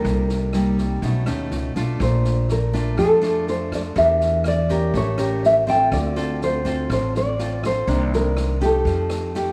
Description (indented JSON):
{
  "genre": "bossa nova",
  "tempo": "123 BPM",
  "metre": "4/4",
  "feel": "straight",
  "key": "Bb major",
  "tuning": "A4 = 440 Hz",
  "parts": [
    { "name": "nylon-string guitar", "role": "melody", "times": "0.0-9.5 s", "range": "A4 to G5", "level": "-23 LUFS", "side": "equal", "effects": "none" },
    { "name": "nylon-string guitar", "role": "accompaniment", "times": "0.0-9.5 s", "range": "A2 to Bb4", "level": "-27 LUFS", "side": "equal", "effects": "none" },
    { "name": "upright bass", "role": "bass", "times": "0.0-9.5 s", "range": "A1 to F2", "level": "-26 LUFS", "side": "equal", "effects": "none" },
    { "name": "swinging big-band drum kit", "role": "drums", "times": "0.0-9.4 s", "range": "kick drum, rim click, snare drum", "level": "-36 LUFS", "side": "equal", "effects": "none" }
  ],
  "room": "moderate echo chamber reverb, RT60 2.1 s",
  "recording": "none",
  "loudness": "-21 LUFS",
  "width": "mono",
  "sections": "0.0-9.5 A section",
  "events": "none",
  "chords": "0.0 Cm7; 1.0 B9; 2.0 Bbmaj7; 4.0 Em7b5; 4.9 A7b9; 5.9 Dm7; 7.9 Cm9; 8.9 F9"
}